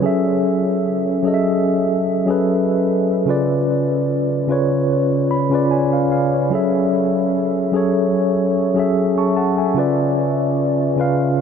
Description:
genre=R&B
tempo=74 BPM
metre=4/4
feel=swing 54% on 16ths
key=F# minor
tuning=A4 = 441 Hz
part: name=mellow tine electric piano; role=solo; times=0.0-11.4 s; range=C#3 to C#6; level=-16 LUFS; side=equal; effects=medium stereo tremolo, ping-pong delay
room=wet huge ambient reverb, RT60 7.8 s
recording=dreamy mix soaked in reverb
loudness=-16 LUFS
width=side -7 dB against mid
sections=0.0-11.4 A section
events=tine electric piano fill 4.9-6.5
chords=0.0 F#m9; 3.3 C#7b9; 6.5 F#m9; 9.8 C#7b9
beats=| 0.04 0.85 1.66 2.47 | 3.28 4.09 4.90 5.71 | 6.52 7.33 8.14 8.95 | 9.77 10.58 11.39

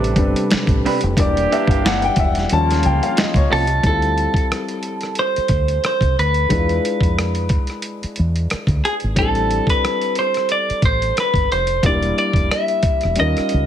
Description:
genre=R&B, neo-soul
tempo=90 BPM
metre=4/4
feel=swing 54% on 16ths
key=D dorian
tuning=A4 = 440 Hz
part: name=warm upright piano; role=accompaniment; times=0.0-13.7 s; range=F3 to A5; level=-23 LUFS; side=left 3 dB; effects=none
part: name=percussive tonewheel organ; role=sustained chords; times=0.0-3.8 s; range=C3 to D5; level=-28 LUFS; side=right 2 dB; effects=fast rotary speaker
part: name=warm horn section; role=stabs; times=0.0-3.5 s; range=C3 to G4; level=-27 LUFS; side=right 5 dB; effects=none
part: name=deep dub fingered electric bass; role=bass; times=0.0-13.7 s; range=E1 to F2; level=-20 LUFS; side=equal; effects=none
part: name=dusty soul sampler-style drum kit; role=drums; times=0.0-13.7 s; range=finger snaps, hi-hat, kick drum, rim click, snare drum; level=-20 LUFS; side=equal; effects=none
part: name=electric guitar through a small old amp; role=second line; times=0.9-3.7 s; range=E3 to B4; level=-24 LUFS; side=right 4 dB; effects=none
part: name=clean electric guitar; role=melody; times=3.5-13.7 s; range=G#4 to E5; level=-19 LUFS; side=right 1 dB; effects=slapback echo
room=light reverb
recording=heavily compressed radio sound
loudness=-15 LUFS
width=side -10 dB against mid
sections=0.0-3.8 A section; 3.8-13.7 B section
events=upright piano solo 0.0-3.8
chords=0.0 Am11; 1.2 Em7b5; 2.5 Eb9; 3.8 Dm11; 6.5 E7b9; 9.2 Am7; 11.8 Em7b5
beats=0.50 | 1.17 1.83 2.50 3.17 | 3.83 4.50 5.17 5.83 | 6.50 7.17 7.83 8.50 | 9.17 9.84 10.50 11.17 | 11.84 12.50 13.17

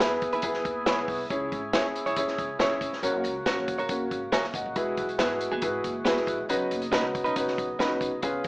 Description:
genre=uptempo 1960s-style soul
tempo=139 BPM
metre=4/4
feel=straight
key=B major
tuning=A4 = 440 Hz
part: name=clear upright piano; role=accompaniment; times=0.0-8.5 s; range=B3 to G#5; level=-28 LUFS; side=equal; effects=none
part: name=overdriven tonewheel organ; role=sustained chords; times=0.0-8.5 s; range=C#3 to G#4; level=-35 LUFS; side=equal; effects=slow rotary speaker
part: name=clean electric guitar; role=stabs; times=0.0-7.9 s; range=B3 to C#5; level=-30 LUFS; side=right 1 dB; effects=none
part: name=upright bass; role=bass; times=0.0-8.5 s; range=E1 to E2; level=-41 LUFS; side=equal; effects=none
part: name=vintage drum kit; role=drums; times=0.0-8.5 s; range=hi-hat, kick drum, snare drum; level=-30 LUFS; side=equal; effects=none
room=moderate club reverb, RT60 0.6 s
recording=small speaker sound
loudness=-25 LUFS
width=side -23 dB against mid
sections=0.0-8.5 A section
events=none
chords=0.0 E; 1.3 C#m; 3.0 F#; 4.8 Eadd9; 6.5 Badd9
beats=0.00 0.43 0.86 | 1.30 1.73 2.16 2.60 | 3.03 3.46 3.90 4.33 | 4.76 5.20 5.63 6.06 | 6.49 6.93 7.36 7.79 | 8.23

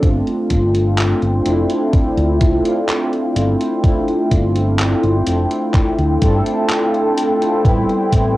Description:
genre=vaporwave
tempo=63 BPM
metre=4/4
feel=straight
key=unclear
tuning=A4 = 440 Hz
part: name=mellow synth brass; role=accompaniment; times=0.0-8.4 s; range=G3 to A4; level=-17 LUFS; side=equal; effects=lush chorus, cassette tape, tape echo
part: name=warbly tape-like pad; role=sustained chords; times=0.4-8.4 s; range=A4 to C6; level=-23 LUFS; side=left 1 dB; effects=chorus, built-in reverb, cassette tape
part: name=fingered electric bass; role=bass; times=0.0-8.4 s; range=F1 to G2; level=-18 LUFS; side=equal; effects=none
part: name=detuned 8-bit digital drum machine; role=drums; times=0.0-8.3 s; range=handclaps, hi-hat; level=-25 LUFS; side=equal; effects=cassette tape
part: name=electronic kick drum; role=drums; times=0.0-8.3 s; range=none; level=-16 LUFS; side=equal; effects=cassette tape
room=light reverb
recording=home recording on cassette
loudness=-14 LUFS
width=side -17 dB against mid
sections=0.0-8.4 A section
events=none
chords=0.0 G9sus4; 7.7 Am9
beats=| 0.03 0.98 1.94 2.89 | 3.84 4.79 5.75 6.70 | 7.65

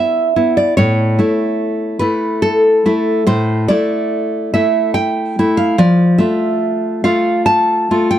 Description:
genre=romantic piece for solo classical guitar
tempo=72 BPM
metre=3/4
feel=rubato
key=A major, A minor from 3.3 s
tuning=A4 = 440 Hz
part: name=nylon-string guitar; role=solo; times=0.0-8.2 s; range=A2 to A5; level=-12 LUFS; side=equal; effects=none
room=light reverb, small room ambience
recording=dry, close 1970s-style studio recording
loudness=-12 LUFS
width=side -11 dB against mid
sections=0.0-8.2 A section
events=none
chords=0.0 E5; 0.8 A5; 5.8 F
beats=| 0.78 1.61 2.44 | 3.27 4.11 4.95 | 5.78 6.62 7.46

